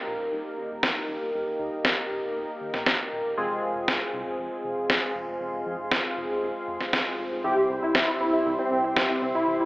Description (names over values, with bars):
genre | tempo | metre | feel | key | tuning
italo disco | 118 BPM | 4/4 | straight | F minor | A4 = 438 Hz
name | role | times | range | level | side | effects
lush unison pad | sustained chords | 0.0-9.7 s | G4 to C6 | -33 LUFS | equal | chorus
chorused polysynth | stabs | 0.0-9.7 s | G3 to Bb4 | -30 LUFS | equal | tape echo
chorused synth bass | bass | 0.1-9.7 s | Eb1 to F2 | -43 LUFS | equal | none
electronic snare drum | drums | 0.8-9.1 s | none | -26 LUFS | equal | small room ambience, gated reverb
wide unison lead | melody | 7.4-9.7 s | C4 to G4 | -25 LUFS | equal | ensemble chorus, tape echo
soft round pluck | arpeggios | 7.4-9.7 s | E3 to E4 | -34 LUFS | equal | none
room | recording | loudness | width
moderate plate reverb, RT60 2.8 s | telephone sound | -24 LUFS | side -20 dB against mid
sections
0.0-9.7 A section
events
filter sweep on analog synth pad 0.0-9.7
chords
0.0 Eb; 3.4 Fm; 7.4 C